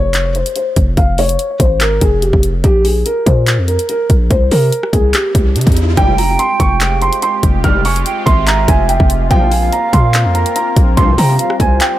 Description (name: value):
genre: hip hop, trap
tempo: 144 BPM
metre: 4/4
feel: half-time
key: F harmonic minor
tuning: A4 = 440 Hz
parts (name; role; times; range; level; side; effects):
- felt-muted upright piano; melody; 0.0-12.0 s; G4 to F6; -16 LUFS; right 1 dB; ping-pong delay
- distorted 808-style bass; bass; 0.0-11.8 s; F1 to C3; -14 LUFS; equal; distortion
- trap drum kit; drums; 0.1-11.9 s; handclaps, hi-hat, kick drum, rim click; -14 LUFS; equal; none
- riser; sound effects; 5.1-6.0 s; none; -26 LUFS; right 1 dB; none
- mellow hollow jazz flute; second line; 6.0-12.0 s; C5 to Ab5; -20 LUFS; right 4 dB; ping-pong delay
- sweeping resonant pad; sustained chords; 6.0-12.0 s; G3 to Bb4; -22 LUFS; left 2 dB; chorus
- sync-sweep polysynth; stabs; 6.0-11.2 s; C2 to G3; -24 LUFS; left 4 dB; chorus, ping-pong delay
room: little or no reverb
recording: none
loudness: -10 LUFS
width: side -14 dB against mid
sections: 0.0-6.0 A section; 6.0-12.0 B section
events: riser 5.1-6.0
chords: 0.0 Fm; 2.6 Bbsus2; 4.3 C5; 6.0 Fmadd9; 9.3 Bbsus2; 11.0 Csus4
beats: 0.14 0.56 | 0.97 1.39 1.81 2.22 | 2.64 3.06 3.47 3.89 | 4.31 4.72 5.14 5.56 | 5.97 6.39 6.81 7.22 | 7.64 8.06 8.47 8.89 | 9.31 9.72 10.14 10.56 | 10.97 11.39 11.81